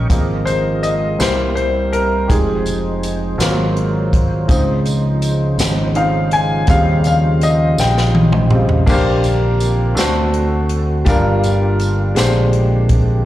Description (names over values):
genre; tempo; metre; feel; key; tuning
slow gospel; 55 BPM (dotted quarters); 6/8; straight; Ab major, Bb major from 8.9 s; A4 = 442 Hz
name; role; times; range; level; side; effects
clear concert grand piano; accompaniment; 0.0-13.2 s; G2 to Ab5; -18 LUFS; left 1 dB; none
percussive tonewheel organ; sustained chords; 0.0-13.2 s; Db3 to Eb5; -24 LUFS; right 2 dB; slow rotary speaker, chorus vibrato
fingered electric bass; bass; 0.0-13.2 s; F1 to Eb2; -17 LUFS; equal; none
mellow French horn section; sustained chords; 0.1-13.2 s; Db3 to C5; -27 LUFS; right 2 dB; none
swinging big-band drum kit; drums; 0.1-13.1 s; crash cymbal, hi-hat, kick drum, snare drum, toms; -19 LUFS; equal; none
tambourine; percussion; 0.1-12.5 s; none; -29 LUFS; right 2 dB; none
room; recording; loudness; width
light reverb, studio reverb; live gig heard through the venue's PA, club reverb; -13 LUFS; side -14 dB against mid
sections
0.1-8.9 A section; 8.9-13.2 B section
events
grand piano solo 0.1-8.9; drum fill 7.8-8.9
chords
0.1 Ab69; 1.2 C7; 2.3 Fm7; 3.4 Ab13; 4.5 Dbmaj9; 6.7 Eb13; 8.9 Bb69; 10.0 D7; 11.1 Gm7; 12.2 Bb13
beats
| 0.10 1.20 | 2.30 3.40 | 4.50 5.59 | 6.69 7.79 | 8.88 9.98 | 11.07 12.17